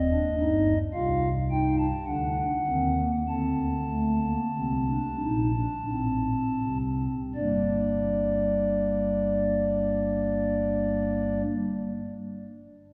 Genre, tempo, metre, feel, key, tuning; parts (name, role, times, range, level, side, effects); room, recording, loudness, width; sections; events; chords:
classical, baroque-style 3-part fugue for pipe organ; 40-55 BPM; 4/4; straight; G minor; A4 = 440 Hz
pipe organ, stopped flute; solo; 0.0-11.4 s; Eb1 to A5; -27 LUFS; equal
wet church reverb, RT60 3.6 s; heard from further back in the room; -27 LUFS; mono
0.0-7.3 A section; 7.3-12.9 B section
slowing down 0.0-7.3
0.0 Cm/Eb; 2.1 D7; 7.3 Gm